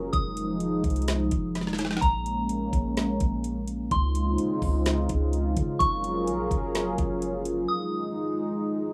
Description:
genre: hip hop, atmospheric cloud-rap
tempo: 127 BPM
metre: 4/4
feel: half-time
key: Bb minor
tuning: A4 = 440 Hz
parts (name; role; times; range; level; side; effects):
- dark analog pad; sustained chords; 0.0-8.9 s; Db3 to Bb4; -30 LUFS; equal; chorus, sidechain pumping
- soft 808-style bass; bass; 0.0-7.7 s; F1 to Db3; -33 LUFS; equal; none
- soft synth bell; melody; 0.1-8.9 s; Bb5 to Eb6; -33 LUFS; equal; chorus, phaser, tape echo
- smooth R&B drum kit; drums; 0.1-7.6 s; hi-hat, kick drum, snare drum; -32 LUFS; equal; none
room: moderate studio reverb, RT60 0.6 s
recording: rough home demo mix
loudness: -27 LUFS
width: mono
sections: 0.0-8.9 A section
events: drum fill 1.6-2.0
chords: 0.1 Fm7; 2.0 Bbm7; 3.9 Dbmaj7; 5.8 Gbmaj7; 7.7 Fm7

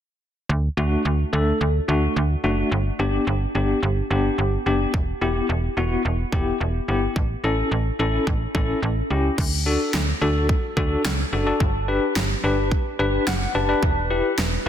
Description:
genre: synth-pop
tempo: 108 BPM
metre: 4/4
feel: straight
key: D major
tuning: A4 = 440 Hz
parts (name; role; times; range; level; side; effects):
- slap-like FM bass; bass; 0.5-14.7 s; E1 to D2; -23 LUFS; right 1 dB; none
- tine electric piano; accompaniment; 0.8-14.7 s; A3 to A5; -23 LUFS; left 2 dB; medium tremolo
- pop drum kit; drums; 4.9-14.5 s; crash cymbal, kick drum, snare drum; -24 LUFS; equal; none
room: moderate lush hall reverb, RT60 1.9 s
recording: dense, heavily limited modern master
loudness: -20 LUFS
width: side -10 dB against mid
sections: 0.5-9.4 A section; 9.4-14.7 B section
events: tine electric piano fill 13.0-13.8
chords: 0.5 D; 2.7 G; 4.9 Em; 7.2 A; 9.4 D; 11.6 Gmaj7; 13.8 Em

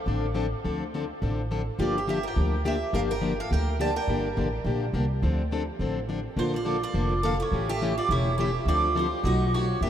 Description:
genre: acoustic string swing (jazz manouche)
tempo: 209 BPM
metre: 4/4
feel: swing 58% on 8ths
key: D minor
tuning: A4 = 444 Hz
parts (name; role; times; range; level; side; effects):
- mandolin; melody; 0.0-9.9 s; C5 to A5; -32 LUFS; right 2 dB; analog delay
- picked steel-string acoustic guitar; second line; 0.0-9.9 s; E4 to D5; -33 LUFS; right 3 dB; none
- picked plugged-in steel-string acoustic guitar; accompaniment; 0.1-9.9 s; B2 to A4; -29 LUFS; left 4 dB; none
- upright bass; bass; 0.1-9.9 s; E1 to E2; -28 LUFS; equal; none
room: moderate huge ambient reverb, RT60 8.6 s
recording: in a vast, echoing space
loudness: -24 LUFS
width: side -10 dB against mid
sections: 0.0-9.9 A section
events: none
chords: 0.0 Dm7; 1.8 Gm7; 5.2 Dm7; 6.4 Bbmaj7; 7.5 A7; 8.7 Dm7; 9.2 B7

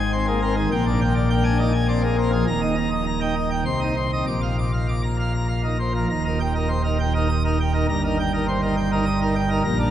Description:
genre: classical, organ toccata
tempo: 102 BPM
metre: 3/4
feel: straight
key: Eb major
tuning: A4 = 440 Hz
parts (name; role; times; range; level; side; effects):
- pipe organ, plenum; solo; 0.0-9.9 s; Eb1 to Eb6; -19 LUFS; equal; none
room: wet cathedral reverb, RT60 4.5 s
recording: dark, warm production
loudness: -19 LUFS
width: side -11 dB against mid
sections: 0.0-6.1 A section; 6.1-9.9 B section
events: none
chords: 0.0 Ab; 0.7 Bb13; 2.5 Eb; 3.7 Cm; 4.3 Bb; 6.1 Eb; 7.9 Eb/G

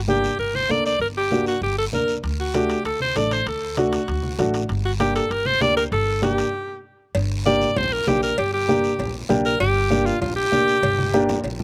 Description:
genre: latin, cumbia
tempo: 195 BPM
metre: 4/4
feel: straight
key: G harmonic minor, G minor from 7.2 s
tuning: A4 = 441 Hz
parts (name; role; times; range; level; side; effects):
- upright bass; bass; 0.0-11.6 s; G1 to D2; -30 LUFS; equal; none
- edgy alto saxophone; melody; 0.1-11.3 s; F4 to D5; -24 LUFS; equal; none
- dark upright piano; accompaniment; 0.1-11.4 s; A3 to Bb4; -25 LUFS; equal; none
- congas; percussion; 0.1-11.6 s; none; -34 LUFS; equal; none
- guiro; percussion; 0.1-11.6 s; none; -39 LUFS; equal; none
- timbales and cowbell; percussion; 2.2-11.6 s; none; -33 LUFS; equal; slapback echo
room: little or no reverb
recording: recorded outdoors, with no room sound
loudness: -21 LUFS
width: mono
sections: 0.0-7.2 A section; 7.2-11.6 B section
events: stop 6.5-7.2; alto saxophone solo 7.2-11.6; drum fill 10.8-11.6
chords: 0.0 Gm; 2.2 D; 4.7 Gm

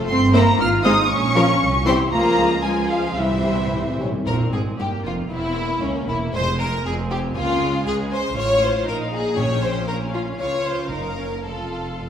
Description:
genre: quick classical-period movement for symphony orchestra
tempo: 117 BPM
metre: 2/4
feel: rubato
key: F minor, Bb minor from 8.4 s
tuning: A4 = 440 Hz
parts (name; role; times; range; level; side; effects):
- rich studio violin section; second line; 0.0-12.1 s; Db4 to Db5; -24 LUFS; left 2 dB; none
- warm studio viola section; accompaniment; 0.0-12.1 s; E3 to F4; -26 LUFS; right 1 dB; none
- rich studio double bass section; bass; 0.0-12.1 s; E1 to Db2; -26 LUFS; right 2 dB; none
- bright studio violin section; melody; 0.1-12.1 s; Db4 to F6; -27 LUFS; left 2 dB; none
- large flute ensemble; second line; 0.1-4.0 s; E5 to F6; -25 LUFS; equal; none
- rich studio cello section; bass; 0.1-12.1 s; Db2 to F4; -26 LUFS; right 1 dB; none
- dark French horn section; sustained chords; 0.3-4.1 s; F3 to G4; -27 LUFS; left 2 dB; none
- timpani; percussion; 3.2-7.0, 9.4-9.8 s; F2 to C3; -29 LUFS; left 1 dB; none
room: wet recital hall reverb, RT60 1.4 s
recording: recorded in a church or concert hall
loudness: -18 LUFS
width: side -9 dB against mid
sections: 0.0-4.3 A section; 4.3-12.1 B section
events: timpani fill 3.2-4.3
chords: 0.1 C7/G; 0.6 Fm/Ab; 1.1 Bbm; 1.6 C; 2.1 Db; 3.2 C; 4.3 Fm; 5.3 C7b9/E; 6.3 Fm; 7.3 Db; 8.4 F/A; 8.9 Bb5; 9.4 Bbm69; 10.4 Dbmaj7; 10.9 Gbmaj7; 11.5 F

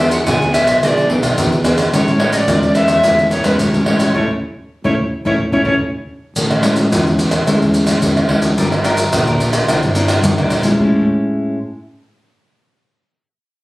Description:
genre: samba and choro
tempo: 108 BPM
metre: 4/4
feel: straight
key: A major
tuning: A4 = 440 Hz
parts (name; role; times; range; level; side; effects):
- reedy alto recorder; melody; 0.0-5.7 s; B4 to G#5; -17 LUFS; equal; none
- nylon-string guitar; accompaniment; 0.0-11.6 s; A2 to Bb4; -16 LUFS; left 1 dB; none
- fuzz fingered electric bass; bass; 0.0-11.1 s; G1 to G2; -20 LUFS; equal; overdrive
- maracas, pandeiro, surdo and tamborim; percussion; 0.1-10.9 s; none; -17 LUFS; equal; none
room: moderate studio reverb, RT60 0.6 s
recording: recorded on a phone in the room, studio reverb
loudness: -12 LUFS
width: side -19 dB against mid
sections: 0.0-6.4 A section; 6.4-10.8 B section; 10.8-13.0 C section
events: band accent 4.1-6.4; drum fill 5.5-6.4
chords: 0.0 E7; 1.9 Amaj7; 8.6 Gm7; 9.7 C9; 10.8 Amaj7

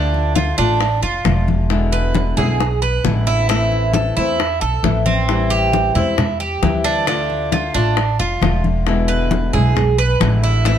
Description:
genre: latin, Cuban son and guajira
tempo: 134 BPM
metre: 4/4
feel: straight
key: A minor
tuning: A4 = 441 Hz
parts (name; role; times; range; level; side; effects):
- flamenco guitar; accompaniment; 0.0-10.8 s; B2 to F4; -22 LUFS; left 6 dB; none
- Cuban tres; arpeggios; 0.0-10.8 s; C4 to B4; -20 LUFS; right 6 dB; none
- upright bass; bass; 0.0-10.8 s; E1 to E2; -19 LUFS; right 1 dB; none
- bongos; percussion; 0.1-10.8 s; none; -24 LUFS; left 7 dB; none
- congas; percussion; 0.1-10.8 s; none; -22 LUFS; left 2 dB; none
room: little or no reverb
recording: none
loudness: -14 LUFS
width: side -9 dB against mid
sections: 0.0-10.8 A section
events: none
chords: 0.0 Dm; 1.7 E7; 3.5 Am; 5.3 Am7; 7.1 Dm; 8.9 E7

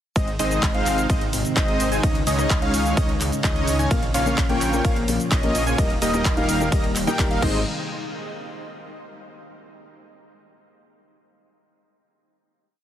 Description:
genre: EDM, festival progressive house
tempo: 128 BPM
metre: 4/4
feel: straight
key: Ab major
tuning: A4 = 441 Hz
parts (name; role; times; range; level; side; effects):
- lush unison pad; sustained chords; 0.2-7.6 s; Ab2 to Ab4; -30 LUFS; equal; chorus, sidechain pumping
- wide unison lead; arpeggios; 0.2-7.6 s; Eb5 to Ab5; -28 LUFS; equal; sidechain pumping, dub echo
- dense compressed supersaw; riff; 0.2-7.6 s; G3 to Ab5; -26 LUFS; right 1 dB; sidechain pumping, dub echo
- wide detuned saw bass; bass; 0.2-7.6 s; Eb1 to Db2; -27 LUFS; equal; chorus, sidechain pumping
- big-room dance drum kit; drums; 0.2-7.5 s; crash cymbal, handclaps, hi-hat, ride cymbal, rim click, shaker; -29 LUFS; equal; overdrive
- electronic kick drum; drums; 0.2-7.5 s; none; -22 LUFS; equal; overdrive
- felt-muted upright piano; accompaniment; 3.9-7.6 s; Bb2 to C5; -29 LUFS; left 5 dB; sidechain pumping, dub echo
room: light reverb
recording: heavily compressed radio sound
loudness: -19 LUFS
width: side -10 dB against mid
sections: 0.2-7.7 drop; 7.7-9.5 final hit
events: drop 0.2-7.7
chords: 0.2 Ab; 2.0 Dbsus2; 3.9 Bbm; 5.8 Eb; 7.4 Ab; 7.7 N.C.

